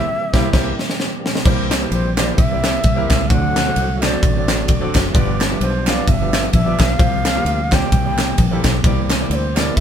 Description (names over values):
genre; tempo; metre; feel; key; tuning
uptempo gospel; 130 BPM; 4/4; swing 57% on 8ths; unclear; A4 = 441 Hz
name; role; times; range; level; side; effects
mellow shakuhachi; melody; 0.0-9.8 s; C5 to G5; -23 LUFS; equal; none
percussive tonewheel organ; sustained chords; 0.0-9.8 s; D3 to G4; -26 LUFS; right 1 dB; fast rotary speaker, overdrive, chorus vibrato
clear concert grand piano; accompaniment; 0.3-9.8 s; G2 to F5; -25 LUFS; equal; none
fingered electric bass; bass; 0.3-9.8 s; F1 to E2; -21 LUFS; equal; none
crisp fusion drum kit; drums; 0.3-9.8 s; crash cymbal, kick drum, ride cymbal, snare drum; -17 LUFS; equal; none
group handclap; percussion; 1.7-9.7 s; none; -25 LUFS; right 2 dB; none
room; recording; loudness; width
light reverb; band playing live in one room; -14 LUFS; side -8 dB against mid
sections
0.0-1.5 A section; 1.5-9.8 A section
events
band accent 0.0-1.5; drum fill 0.5-1.5; grand piano fill 0.5-1.5, 4.5-5.1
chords
0.0 C7; 3.3 D7; 5.1 G7; 7.0 C7sus4; 7.9 C7